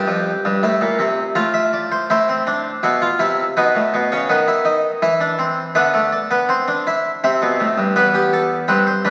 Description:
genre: classical, baroque-style 3-part fugue for harpsichord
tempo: 82 BPM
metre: 4/4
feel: straight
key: A minor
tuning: A4 = 438 Hz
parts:
  - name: harpsichord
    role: solo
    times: 0.0-9.1 s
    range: E2 to G5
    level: -18 LUFS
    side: equal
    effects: none
room: wet scoring stage reverb, RT60 1.8 s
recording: very old 78 rpm record, vinyl crackle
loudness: -18 LUFS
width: mono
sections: 0.0-2.1 A section; 2.1-9.1 B section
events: none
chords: 0.0 N.C.; 0.6 F/A; 2.1 Am; 3.6 B7; 5.0 E5; 6.5 Am; 8.0 Em

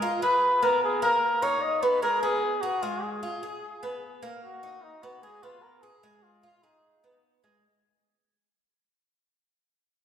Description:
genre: latin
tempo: 150 BPM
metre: 4/4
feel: straight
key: unclear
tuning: A4 = 441 Hz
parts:
  - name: Cuban tres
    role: arpeggios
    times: 0.0-7.6 s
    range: Ab3 to Ab4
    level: -30 LUFS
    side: right 1 dB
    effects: none
  - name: trumpet with cup mute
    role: melody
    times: 0.2-7.2 s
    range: Eb4 to Eb5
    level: -25 LUFS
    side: left 1 dB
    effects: none
room: wet scoring stage reverb, RT60 2.1 s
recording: recorded in a church or concert hall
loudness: -23 LUFS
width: side -9 dB against mid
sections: 0.0-7.6 A section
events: fade-out 0.0-7.6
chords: 0.4 Abm; 1.2 Eb5; 2.0 Abm9; 2.8 Fm/Ab; 3.6 Abm; 4.4 Ebm; 5.2 Abm69; 6.0 Fm7/Ab; 6.8 Abm

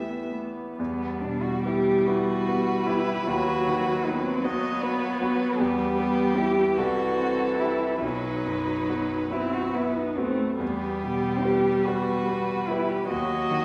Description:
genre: classical, slow romantic movement for piano quartet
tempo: 42-53 BPM (dotted quarters)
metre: 6/8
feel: rubato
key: E minor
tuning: A4 = 440 Hz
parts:
  - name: muted violin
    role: melody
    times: 0.0-13.6 s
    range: G4 to E5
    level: -35 LUFS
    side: equal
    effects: none
  - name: muted cello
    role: second line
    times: 0.0-13.6 s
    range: A3 to G4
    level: -30 LUFS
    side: equal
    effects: none
  - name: bright grand piano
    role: accompaniment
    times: 0.0-13.6 s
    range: B1 to B4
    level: -31 LUFS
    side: equal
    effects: none
  - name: muted viola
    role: accompaniment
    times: 0.0-13.6 s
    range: E3 to C4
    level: -32 LUFS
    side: equal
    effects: none
room: wet recital hall reverb, RT60 1.3 s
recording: heard from further back in the room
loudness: -26 LUFS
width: mono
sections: 0.8-13.6 A section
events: none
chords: 0.0 Em; 3.3 B/D#; 5.6 Em; 6.8 C; 8.0 B; 10.6 Em; 13.1 B/D# (rootless)

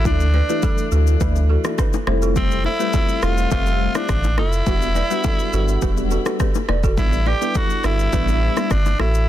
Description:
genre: afrobeats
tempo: 104 BPM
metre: 4/4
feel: straight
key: unclear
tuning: A4 = 444 Hz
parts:
  - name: raspy tenor saxophone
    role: melody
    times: 0.0-9.3 s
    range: C4 to G4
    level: -24 LUFS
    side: left 1 dB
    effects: ping-pong delay
  - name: warm sub bass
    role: bass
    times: 0.0-9.3 s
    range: E1 to D2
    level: -19 LUFS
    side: equal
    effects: none
  - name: soft electric-piano-like synth keys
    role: accompaniment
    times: 0.1-8.8 s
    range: E3 to E5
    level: -26 LUFS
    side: left 2 dB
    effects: chorus, phaser
  - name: afro-pop drum kit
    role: drums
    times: 0.1-9.3 s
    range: kick drum, rim click, shaker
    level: -22 LUFS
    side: equal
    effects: soft clipping on snare
  - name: congas and bongos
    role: percussion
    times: 0.1-9.1 s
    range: none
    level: -30 LUFS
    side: left 10 dB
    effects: none
  - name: balafon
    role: riff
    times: 0.3-9.1 s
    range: E4 to D5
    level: -28 LUFS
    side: right 4 dB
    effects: ping-pong delay
room: small room ambience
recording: dense, heavily limited modern master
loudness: -16 LUFS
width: side -12 dB against mid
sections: 0.0-9.3 A section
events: none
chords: 0.1 Dsus2; 2.1 Fmaj7; 4.7 Em7; 7.0 A7sus4

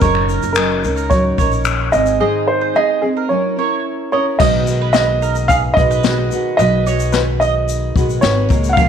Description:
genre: acoustic pop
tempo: 110 BPM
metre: 4/4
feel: straight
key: unclear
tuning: A4 = 438 Hz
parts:
  - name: dark upright piano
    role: melody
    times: 0.0-8.9 s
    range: Ab4 to Gb5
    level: -17 LUFS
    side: right 2 dB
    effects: none
  - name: fingerpicked steel-string acoustic guitar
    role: accompaniment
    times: 0.0-8.9 s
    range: Ab2 to Cb5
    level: -20 LUFS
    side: equal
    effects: double-tracked left and right
  - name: mandolin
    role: arpeggios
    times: 0.0-8.9 s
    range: Ab4 to F5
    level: -24 LUFS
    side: right 10 dB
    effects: none
  - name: upright bass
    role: bass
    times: 0.0-8.9 s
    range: Gb1 to Db2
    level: -19 LUFS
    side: left 1 dB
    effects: none
  - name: jazz brush drum kit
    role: drums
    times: 0.0-8.9 s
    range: crash cymbal, finger snaps, kick drum, shaker, snare drum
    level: -19 LUFS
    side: left 4 dB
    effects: none
room: light reverb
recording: 1960s-style stereo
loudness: -13 LUFS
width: side -8 dB against mid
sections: 0.0-4.4 A section; 4.4-8.9 B section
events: none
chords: 0.0 Gb6; 1.9 Ab; 3.3 Gb7; 4.4 Cb6

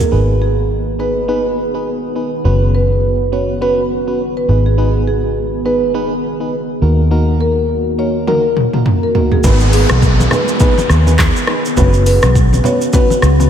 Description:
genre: afrobeats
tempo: 103 BPM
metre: 4/4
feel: swing 58% on 16ths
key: G# minor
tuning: A4 = 440 Hz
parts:
  - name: marimba with soft mallets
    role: melody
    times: 0.0-13.4 s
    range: G#4 to C#5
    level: -19 LUFS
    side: right 1 dB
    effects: analog delay
  - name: deep dark ambient pad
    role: sustained chords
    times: 0.0-13.5 s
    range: C#3 to G#4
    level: -21 LUFS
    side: equal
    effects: chorus, built-in reverb
  - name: deep house drum kit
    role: drums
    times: 0.0-0.1, 8.3-13.5 s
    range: handclaps, hi-hat, kick drum, rim click, shaker, toms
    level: -15 LUFS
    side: equal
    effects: none
  - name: FM electric piano with auto-pan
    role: accompaniment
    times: 0.1-13.5 s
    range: A#3 to B4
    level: -20 LUFS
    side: right 1 dB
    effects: none
  - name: vintage muted fingered electric bass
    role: bass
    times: 0.1-13.5 s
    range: F#1 to D#2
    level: -14 LUFS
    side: equal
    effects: none
  - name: congas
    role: percussion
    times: 9.4-13.5 s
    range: none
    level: -22 LUFS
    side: left 2 dB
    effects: none
  - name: downlifter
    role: sound effects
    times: 9.4-13.5 s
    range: none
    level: -22 LUFS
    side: equal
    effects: none
room: moderate lush hall reverb, RT60 2.7 s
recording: dreamy mix soaked in reverb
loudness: -11 LUFS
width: side -9 dB against mid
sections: 0.1-9.4 A section; 9.4-13.5 B section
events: drum fill 8.3-9.4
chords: 0.1 G#m; 2.5 F#sus4; 4.5 G#m; 6.8 D#m; 9.4 G#m; 11.8 F#sus4

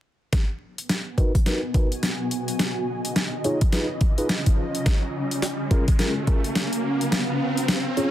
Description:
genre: glitch hop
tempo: 106 BPM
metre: 4/4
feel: swing 61% on 16ths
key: G# dorian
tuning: A4 = 439 Hz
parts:
  - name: dubstep drum kit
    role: drums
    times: 0.3-8.1 s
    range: hi-hat, snare drum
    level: -26 LUFS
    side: equal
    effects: overdrive, studio reverb
  - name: electronic kick drum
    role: drums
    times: 0.3-6.4 s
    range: none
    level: -20 LUFS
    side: equal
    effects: overdrive, studio reverb
  - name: riser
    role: sound effects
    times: 2.3-8.1 s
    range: none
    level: -31 LUFS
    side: right 2 dB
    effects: none
  - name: granular cloud pad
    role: texture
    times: 1.1-8.1 s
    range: B3 to B5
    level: -28 LUFS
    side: equal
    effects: built-in reverb, sidechain pumping
  - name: mellow tine electric piano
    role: stabs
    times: 1.2-8.1 s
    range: C#4 to C#5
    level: -28 LUFS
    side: equal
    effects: sidechain pumping, low-pass filter, tape echo
room: little or no reverb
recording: dense, heavily limited modern master, vinyl crackle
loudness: -21 LUFS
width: side -12 dB against mid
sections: 0.3-8.1 A section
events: build-up 0.3-8.1; drum fill 0.3-8.1; filter sweep on tine electric piano 0.3-8.1; riser 2.3-8.1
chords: 0.3 G#m7; 2.6 C#9; 4.9 F#maj7; 7.1 A#m7

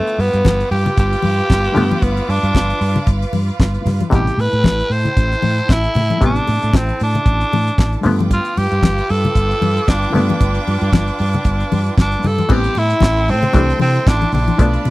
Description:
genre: disco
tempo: 115 BPM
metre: 4/4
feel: swing 56% on 16ths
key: unclear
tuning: A4 = 438 Hz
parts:
  - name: raspy tenor saxophone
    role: melody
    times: 0.0-14.9 s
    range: A3 to C5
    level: -19 LUFS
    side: equal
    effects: none
  - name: muted clav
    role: accompaniment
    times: 0.0-14.9 s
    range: B2 to D4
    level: -20 LUFS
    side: left 2 dB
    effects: overdrive
  - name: clear studio string section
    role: sustained chords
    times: 0.0-14.9 s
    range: E4 to D6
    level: -27 LUFS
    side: right 3 dB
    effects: none
  - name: damped 70s drum kit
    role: drums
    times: 0.1-14.9 s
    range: crash cymbal, handclaps, hi-hat, kick drum, snare drum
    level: -14 LUFS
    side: equal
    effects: none
  - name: fingered electric bass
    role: bass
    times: 0.2-14.9 s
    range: G1 to C3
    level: -18 LUFS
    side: equal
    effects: none
  - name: congas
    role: percussion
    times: 0.4-14.9 s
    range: none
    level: -22 LUFS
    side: left 4 dB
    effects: none
room: little or no reverb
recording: dry, close 1970s-style studio recording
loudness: -13 LUFS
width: side -18 dB against mid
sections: 0.0-12.5 A section; 12.5-14.9 B section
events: none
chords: 0.0 G7; 4.1 Am7; 8.0 G7; 12.5 Am7; 13.5 C6

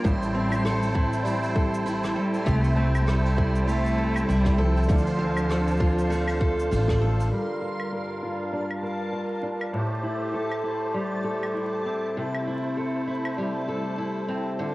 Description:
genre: folktronica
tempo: 99 BPM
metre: 4/4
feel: swing 56% on 16ths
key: G dorian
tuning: A4 = 440 Hz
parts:
  - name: warm cello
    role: melody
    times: 0.0-7.0 s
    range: F3 to A3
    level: -28 LUFS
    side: equal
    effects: cassette tape
  - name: musette accordion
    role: sustained chords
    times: 0.0-14.7 s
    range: G2 to A5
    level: -32 LUFS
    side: right 2 dB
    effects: low-pass filter, cassette tape
  - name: picked steel-string acoustic guitar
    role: arpeggios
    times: 0.0-14.7 s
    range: A2 to Bb4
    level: -28 LUFS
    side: equal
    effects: low-pass filter, cassette tape
  - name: electronic kick drum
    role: drums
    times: 0.0-7.0 s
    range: none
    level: -24 LUFS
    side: equal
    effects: none
  - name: soft brush drum kit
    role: drums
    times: 0.0-13.4 s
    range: cabasa, claves, hi-hat, rim click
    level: -37 LUFS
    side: equal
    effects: none
  - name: backwards swelling texture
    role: texture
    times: 0.0-14.7 s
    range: A5 to C6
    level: -38 LUFS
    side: left 1 dB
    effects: built-in reverb, cassette tape
  - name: upright bass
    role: bass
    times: 0.1-7.3 s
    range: A1 to D2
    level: -25 LUFS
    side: equal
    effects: tube saturation
room: light reverb, studio ambience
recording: home recording on cassette, vinyl crackle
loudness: -23 LUFS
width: side -19 dB against mid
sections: 0.0-7.3 A section; 7.3-14.7 B section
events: band accent 6.9-7.2; filter sweep on steel-string acoustic guitar 7.3-14.7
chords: 0.0 Am7; 2.5 C6; 4.9 Dm7; 7.3 Gm7; 9.7 Am7; 12.2 C6

